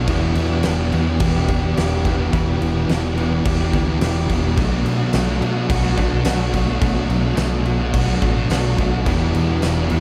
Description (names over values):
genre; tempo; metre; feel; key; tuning
rock, shoegaze and dream pop; 107 BPM; 4/4; straight; E minor; A4 = 440 Hz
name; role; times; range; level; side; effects
clean electric guitar; arpeggios; 0.0-10.0 s; E3 to G4; -31 LUFS; equal; none
cranked stack guitar; riff; 0.0-10.0 s; B2 to G4; -30 LUFS; equal; none
direct-recorded clean electric guitar; riff; 0.0-10.0 s; B2 to G4; -27 LUFS; equal; reverse reverb
thick fuzz guitar; riff; 0.0-10.0 s; E2 to B3; -26 LUFS; equal; distortion, subtle chorus
vintage muted fingered electric bass; bass; 0.0-10.0 s; E1 to B2; -24 LUFS; equal; none
huge arena drum kit; drums; 0.1-10.0 s; crash cymbal, kick drum, snare drum; -25 LUFS; equal; none
tambourine; percussion; 5.1-9.8 s; none; -40 LUFS; equal; none
room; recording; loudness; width
moderate huge ambient reverb, RT60 8.0 s; dreamy mix soaked in reverb; -19 LUFS; mono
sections
0.0-10.0 A section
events
none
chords
0.1 Em7; 4.6 Bm7; 9.1 Em7